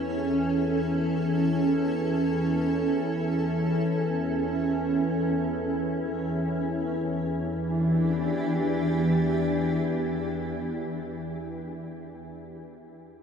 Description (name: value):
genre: dark ambient drone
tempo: free time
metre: none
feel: none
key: unclear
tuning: A4 = 439 Hz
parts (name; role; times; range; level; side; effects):
- granular cloud pad; sustained chords; 0.0-11.7 s; E3 to A4; -28 LUFS; right 1 dB; built-in reverb
- organ-like drone; drone; 0.0-11.3 s; E2 to E3; -28 LUFS; left 1 dB; ensemble chorus, built-in reverb
room: wet huge ambient reverb, RT60 7.0 s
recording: none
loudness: -24 LUFS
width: side -7 dB against mid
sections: 0.0-6.9 A section; 6.9-11.3 B section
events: none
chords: 0.0 N.C.; 6.9 Em7